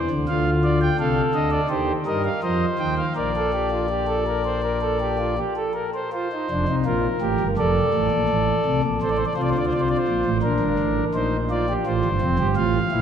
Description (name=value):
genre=classical, baroque-style 3-part fugue for pipe organ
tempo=83 BPM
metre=4/4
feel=straight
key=Bb major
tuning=A4 = 442 Hz
part: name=pipe organ, principal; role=solo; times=0.0-13.0 s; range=F1 to G5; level=-20 LUFS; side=equal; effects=none
room=wet church reverb, RT60 2.8 s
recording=none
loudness=-20 LUFS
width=side -8 dB against mid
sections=0.0-6.1 A section; 6.1-13.0 B section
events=none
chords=0.3 Dm; 1.7 Cm/Eb; 2.4 F5; 3.2 Bb; 6.1 Bb5/F; 7.6 F; 9.0 F/A; 10.4 Bb; 11.9 F